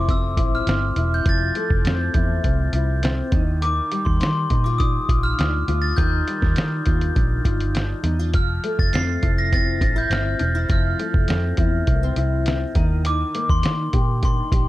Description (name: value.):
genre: indie pop, bedroom pop.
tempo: 102 BPM.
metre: 4/4.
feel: straight.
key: F major.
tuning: A4 = 440 Hz.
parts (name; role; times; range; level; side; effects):
glockenspiel with hard plastic mallets; melody; 0.0-14.7 s; C6 to C7; -26 LUFS; equal; lush chorus, slapback echo.
nylon-string guitar; accompaniment; 0.0-14.7 s; Eb3 to G4; -27 LUFS; left 4 dB; analog chorus, vibrato effect.
vintage muted fingered electric bass; bass; 0.0-14.7 s; E1 to Eb3; -22 LUFS; equal; none.
lo-fi sampler-style drum kit; drums; 0.1-14.7 s; hi-hat, kick drum, snare drum; -22 LUFS; equal; none.
room: little or no reverb.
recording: dark, warm production.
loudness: -18 LUFS.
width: side -16 dB against mid.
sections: 0.0-14.7 A section.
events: none.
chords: 0.0 Fmaj7; 3.3 Ebmaj9; 8.3 Fmaj7; 12.8 Ebmaj7.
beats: 0.08 0.67 | 1.26 1.85 2.44 3.03 | 3.62 4.21 4.80 5.39 | 5.98 6.57 7.16 7.75 | 8.34 8.92 9.51 10.10 | 10.69 11.28 11.87 12.46 | 13.05 13.64 14.23.